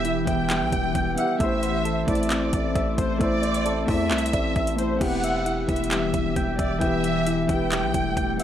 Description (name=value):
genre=hip hop, trap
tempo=133 BPM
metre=4/4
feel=half-time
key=E minor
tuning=A4 = 439 Hz
part: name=warm symphonic violin section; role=second line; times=0.0-8.4 s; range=C5 to G5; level=-28 LUFS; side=right 1 dB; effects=analog delay
part: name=felt-muted upright piano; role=accompaniment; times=0.0-8.4 s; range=E3 to E5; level=-28 LUFS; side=equal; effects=low-pass filter
part: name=glassy FM pad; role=sustained chords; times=0.0-8.4 s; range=E3 to G4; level=-30 LUFS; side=left 2 dB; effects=ensemble chorus, built-in reverb
part: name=soft electric-piano-like synth keys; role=arpeggios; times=0.0-8.4 s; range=E3 to G5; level=-28 LUFS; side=left 1 dB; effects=chorus, low-pass filter, analog delay
part: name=distorted 808-style bass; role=bass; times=0.0-8.4 s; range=E1 to E2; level=-30 LUFS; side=equal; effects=distortion
part: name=trap drum kit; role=drums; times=0.0-8.4 s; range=crash cymbal, handclaps, hi-hat, kick drum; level=-28 LUFS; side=equal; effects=none
room=light reverb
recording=dry, gritty hardware recording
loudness=-21 LUFS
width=side -10 dB against mid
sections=0.0-5.0 A section; 5.0-8.4 A section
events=none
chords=0.0 Em; 1.4 Am; 5.0 Em